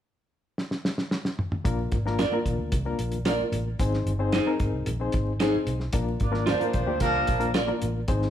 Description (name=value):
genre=uptempo 1960s-style soul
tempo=112 BPM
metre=4/4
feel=straight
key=Bb mixolydian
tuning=A4 = 440 Hz
part: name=cloth-damped thuddy drum kit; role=drums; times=0.6-8.3 s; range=hi-hat, kick drum, snare drum, toms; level=-28 LUFS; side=equal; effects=none
part: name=barky reed electric piano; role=accompaniment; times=1.6-8.3 s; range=Bb3 to C5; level=-29 LUFS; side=left 4 dB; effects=overdrive, fast tremolo
part: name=vintage muted fingered electric bass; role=bass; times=1.6-8.3 s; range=G1 to D2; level=-29 LUFS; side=equal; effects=none
part: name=congas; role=percussion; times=1.8-8.3 s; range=none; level=-41 LUFS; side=right 2 dB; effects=none
part: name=electric guitar through a small old amp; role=stabs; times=2.2-7.7 s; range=Eb4 to D5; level=-28 LUFS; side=right 3 dB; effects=none
part: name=mellow horn section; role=second line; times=6.2-7.5 s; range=F3 to D5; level=-27 LUFS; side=right 2 dB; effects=none
room=moderate large studio reverb, RT60 1.1 s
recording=band playing live in one room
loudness=-24 LUFS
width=side -10 dB against mid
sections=0.0-1.7 A section; 1.7-5.9 B section; 5.9-8.3 C section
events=drum fill 0.6-1.7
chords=0.0 N.C.; 1.7 Bb; 3.8 Ab; 5.9 Bb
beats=0.05 0.58 1.12 | 1.66 2.19 2.73 3.27 | 3.80 4.34 4.87 5.41 | 5.94 6.48 7.02 7.55 | 8.09